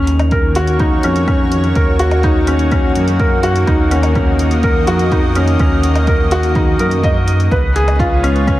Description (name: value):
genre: piano and strings electronica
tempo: 125 BPM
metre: 4/4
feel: straight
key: Eb minor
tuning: A4 = 439 Hz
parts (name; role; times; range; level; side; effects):
- lush unison pad; sustained chords; 0.0-8.6 s; Db3 to Eb5; -21 LUFS; equal; chorus
- dark detuned saw bass; bass; 0.0-8.6 s; Db2 to Gb2; -16 LUFS; equal; sidechain pumping
- electronic hi-hat and woodblock; drums; 0.1-8.6 s; none; -28 LUFS; equal; overdrive, studio reverb
- felt-muted upright piano; riff; 0.3-8.6 s; Db4 to Eb5; -16 LUFS; left 1 dB; tape echo
- electronic kick drum; drums; 0.3-8.6 s; none; -17 LUFS; equal; overdrive, studio reverb
room: light reverb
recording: none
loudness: -11 LUFS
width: side -15 dB against mid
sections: 0.0-8.6 A section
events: none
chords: 0.0 Ebm7; 7.5 Db7